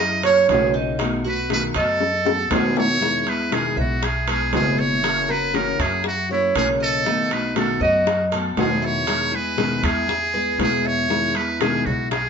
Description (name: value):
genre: latin, Cuban son and guajira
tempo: 119 BPM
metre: 4/4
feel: straight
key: E major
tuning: A4 = 442 Hz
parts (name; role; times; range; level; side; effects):
- trumpet with metal mute; melody; 0.0-12.3 s; E4 to D#5; -22 LUFS; right 1 dB; none
- fingerpicked steel-string acoustic guitar; accompaniment; 0.0-12.2 s; B2 to F#4; -25 LUFS; left 3 dB; none
- Cuban tres; arpeggios; 0.0-12.3 s; D#4 to E5; -24 LUFS; right 3 dB; none
- upright bass; bass; 0.0-12.3 s; F#1 to F#2; -29 LUFS; equal; none
- bongos; percussion; 0.2-12.3 s; none; -27 LUFS; left 5 dB; none
- timbales; percussion; 0.2-12.3 s; none; -27 LUFS; right 3 dB; none
- claves; percussion; 11.6-11.9 s; none; -34 LUFS; left 2 dB; none
room: wet studio reverb, RT60 0.8 s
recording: band playing live in one room, nothing above 7.5 kHz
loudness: -18 LUFS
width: side -6 dB against mid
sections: 0.0-12.3 A section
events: drum fill 2.0-3.0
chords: 0.0 F#7; 1.0 B7; 3.0 Emaj7; 5.0 F#7; 7.1 B7; 9.1 Emaj7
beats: 0.48 | 0.99 1.50 2.00 2.51 | 3.01 3.52 4.02 4.53 | 5.03 5.54 6.04 6.55 | 7.06 7.56 8.07 8.57 | 9.08 9.58 10.09 10.60 | 11.10 11.61 12.11